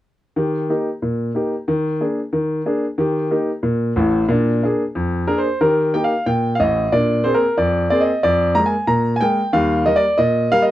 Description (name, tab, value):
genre	jazz, stride piano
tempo	183 BPM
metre	4/4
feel	swing 65% on 8ths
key	Eb major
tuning	A4 = 440 Hz
part	clear grand piano	solo	0.4-10.7 s	A1 to Bb5	-16 LUFS	equal	none
room	light reverb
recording	dry, close 1970s-style studio recording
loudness	-16 LUFS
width	side -14 dB against mid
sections	0.4-5.6 A section; 5.6-10.7 B section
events	none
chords	0.4 Eb; 1.7 Bb7/Eb; 3.0 Eb; 4.3 Bb7; 5.6 Eb; 6.9 Bb9; 8.2 Bb7/F; 9.5 Eb